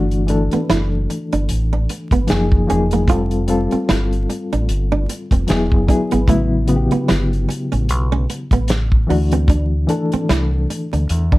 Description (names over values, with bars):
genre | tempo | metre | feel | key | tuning
R&B, neo-soul | 75 BPM | 4/4 | swing 57% on 16ths | G major | A4 = 440 Hz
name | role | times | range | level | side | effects
flamenco guitar | second line | 0.0-11.4 s | A3 to F4 | -23 LUFS | right 5 dB | none
reed electric piano | accompaniment | 0.0-11.4 s | C#3 to A4 | -20 LUFS | left 2 dB | fast tremolo
deep dub fingered electric bass | bass | 0.0-11.4 s | E1 to E2 | -18 LUFS | equal | none
warm soul drum kit | drums | 0.1-11.4 s | hi-hat, kick drum, snare drum | -18 LUFS | equal | none
room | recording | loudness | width
little or no reverb | vinyl crackle | -15 LUFS | side -18 dB against mid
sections
0.0-11.4 A section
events
none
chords
0.0 Gmaj7(no3); 2.3 F#maj9; 3.1 Fadd9; 5.5 Eadd9; 6.3 A9; 9.1 D9